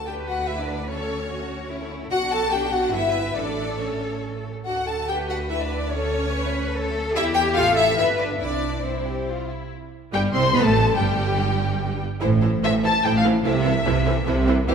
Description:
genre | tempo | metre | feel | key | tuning
quick classical-period movement for string orchestra | 144 BPM | 3/4 | rubato | C major from 7.2 s | A4 = 442 Hz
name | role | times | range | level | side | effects
dark studio violin section | melody | 0.0-14.5 s | G3 to C6 | -29 LUFS | left 3 dB | none
rich studio violin section | second line | 0.0-14.7 s | G4 to A5 | -26 LUFS | left 3 dB | none
rich studio viola section | accompaniment | 0.0-14.7 s | E3 to A4 | -28 LUFS | right 1 dB | none
rich studio double bass section | bass | 0.0-14.7 s | G1 to E2 | -26 LUFS | right 3 dB | none
rich studio cello section | bass | 0.1-14.7 s | G2 to B4 | -26 LUFS | right 1 dB | none
room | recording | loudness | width
wet scoring stage reverb, RT60 2.0 s | minimal, uncompressed stereo recording | -20 LUFS | side -6 dB against mid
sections
0.0-9.7 A section; 9.7-14.7 B section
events
none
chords
0.0 D5; 0.9 A/D; 2.1 Bm; 2.9 Em/G; 3.4 A; 4.7 D5; 5.9 A/D; 7.2 Em; 7.6 Am; 8.0 G; 8.4 C; 9.7 C5; 11.0 N.C.; 12.2 Am; 13.5 Am/C

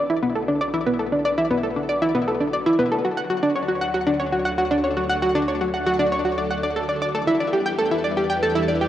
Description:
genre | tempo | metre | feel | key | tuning
ambient, sequencer-driven space music | 117 BPM | 4/4 | straight | unclear | A4 = 441 Hz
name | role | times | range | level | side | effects
phased string machine | sustained chords | 0.0-8.9 s | D3 to B4 | -30 LUFS | equal | ensemble chorus, phaser, cassette tape, shimmer reverb
analog pluck | riff | 0.0-8.9 s | B3 to G5 | -20 LUFS | equal | chorus, cassette tape, ping-pong delay, shimmer reverb
analog drone | bass | 0.2-8.9 s | B1 to E2 | -39 LUFS | equal | chorus
pulsing gated texture | texture | 0.0-8.9 s | D4 to D5 | -38 LUFS | equal | none
room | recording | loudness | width
wet spring reverb, RT60 1.5 s | home recording on cassette | -19 LUFS | side -12 dB against mid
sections
0.0-8.9 A section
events
fade-in on string machine 0.0-8.9; fade-in on synth drone 0.0-8.9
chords
0.0 Bm; 3.0 D; 7.1 Em

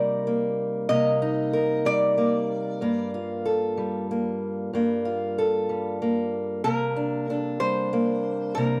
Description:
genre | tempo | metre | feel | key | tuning
acoustic country blues, solo or duo | 62 BPM (dotted quarters) | 12/8 | straight | unclear | A4 = 440 Hz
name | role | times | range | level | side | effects
lap resonator guitar | melody | 0.0-8.8 s | Bb4 to Eb5 | -29 LUFS | equal | none
fingerpicked acoustic archtop guitar | accompaniment | 0.0-8.8 s | G2 to Bb4 | -27 LUFS | equal | none
room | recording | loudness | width
small room ambience | dry, close 1970s-style studio recording | -25 LUFS | mono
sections
0.0-8.8 A section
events
none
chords
0.0 Cm9; 2.8 Gm9; 6.7 Csus2

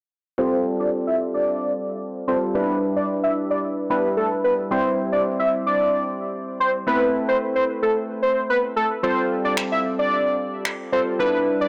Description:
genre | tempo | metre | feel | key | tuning
dance-pop | 111 BPM | 4/4 | straight | unclear | A4 = 440 Hz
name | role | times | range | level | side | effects
fat analog lead | melody | 0.4-11.7 s | A4 to E5 | -24 LUFS | equal | low-pass filter, digital delay
chorused retro synth keys | accompaniment | 0.4-11.7 s | G3 to C5 | -27 LUFS | equal | low-pass filter
electronic finger snaps | drums | 9.6-10.8 s | none | -29 LUFS | equal | overdrive, soft clipping on snare
room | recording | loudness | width
moderate plate reverb, RT60 1.7 s | blown-out, overdriven recording, overdrive | -22 LUFS | mono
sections
0.4-11.7 A section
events
filter sweep 0.4-11.7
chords
0.4 Fadd9; 2.5 G6; 4.7 C; 6.9 Amadd9; 9.0 Fadd9

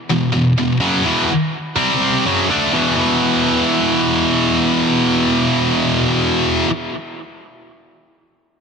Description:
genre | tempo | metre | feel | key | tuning
rock | 125 BPM | 4/4 | straight | E minor | A4 = 440 Hz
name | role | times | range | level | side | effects
heavy high-gain guitar | solo | 0.1-6.7 s | E2 to D4 | -14 LUFS | equal | distortion, tape echo
room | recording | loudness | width
light reverb | dense, heavily limited modern master, lossy compression artefacts | -14 LUFS | side -5 dB against mid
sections
0.0-3.0 A section; 3.0-6.8 B section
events
none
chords
0.0 E5; 1.8 C5; 2.2 E5

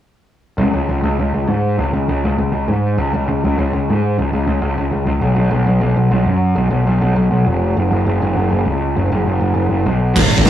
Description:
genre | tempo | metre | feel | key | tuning
punk rock | 201 BPM | 4/4 | straight | Db mixolydian | A4 = 440 Hz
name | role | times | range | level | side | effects
fuzz picked electric bass | bass | 0.6-10.5 s | F1 to Ab2 | -14 LUFS | equal | overdrive
raw garage drum kit | drums | 10.2-10.5 s | crash cymbal, hi-hat, kick drum, snare drum | -10 LUFS | equal | none
room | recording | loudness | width
moderate small room reverb, RT60 0.6 s | rough rehearsal-room recording, tube saturation, studio ambience | -14 LUFS | side -11 dB against mid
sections
0.6-10.2 A section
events
none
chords
none

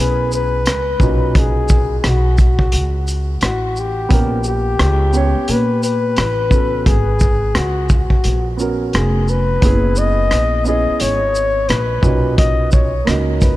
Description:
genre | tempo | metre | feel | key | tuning
hip hop, jazz-hop | 87 BPM | 4/4 | swing 60% on 16ths | B major | A4 = 440 Hz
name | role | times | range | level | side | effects
breathy flugelhorn | melody | 0.0-13.6 s | F#4 to D#5 | -20 LUFS | left 3 dB | analog delay
dark upright piano | accompaniment | 0.0-13.6 s | A#2 to C#5 | -23 LUFS | right 4 dB | none
upright bass | bass | 0.0-13.6 s | E#1 to A#2 | -18 LUFS | equal | none
crunchy breakbeat drum kit | drums | 0.3-13.6 s | hi-hat, kick drum, rim click, shaker | -16 LUFS | equal | vintage 12-bit sampler grit
room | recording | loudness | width
light reverb, small room ambience | none | -13 LUFS | side -16 dB against mid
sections
0.0-13.6 A section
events
none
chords
0.0 F#9sus4 (rootless); 1.0 Bmaj7; 4.1 A#m6; 6.2 Asus2; 6.9 G#m11; 9.6 F#9sus4; 12.0 Bmaj7

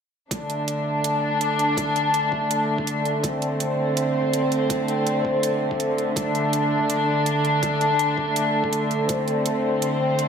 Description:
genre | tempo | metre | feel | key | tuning
half-time drum and bass | 164 BPM | 4/4 | swing 53% on 16ths, half-time | unclear | A4 = 439 Hz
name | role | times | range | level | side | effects
dark studio string section | sustained chords | 0.3-10.3 s | D3 to D4 | -20 LUFS | equal | sidechain pumping
electronic hi-hat | drums | 0.3-10.3 s | none | -30 LUFS | right 5 dB | overdrive
electronic kick drum | drums | 0.3-9.2 s | none | -33 LUFS | equal | high-pass filter on kick, high-pass filter on room
room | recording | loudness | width
wet lush hall reverb, RT60 1.9 s, digital ambience | dreamy mix soaked in reverb | -20 LUFS | side -7 dB against mid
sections
0.3-10.3 A section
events
none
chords
0.3 D5

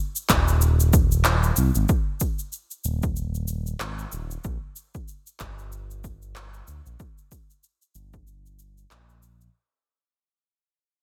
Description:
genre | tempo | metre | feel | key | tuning
organic downtempo | 94 BPM | 4/4 | swing 57% on 16ths | unclear | A4 = 439 Hz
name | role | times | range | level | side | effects
electronic shaker and handclaps | drums | 0.2-9.5 s | none | -29 LUFS | equal | none
smooth gliding synth bass | bass | 0.3-9.5 s | Eb1 to D2 | -26 LUFS | equal | sidechain pumping
electronic kick drum | drums | 0.3-8.2 s | none | -26 LUFS | equal | overdrive
room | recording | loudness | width
little or no reverb | none | -23 LUFS | mono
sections
0.0-9.5 A section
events
fade-out 0.0-9.5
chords
none

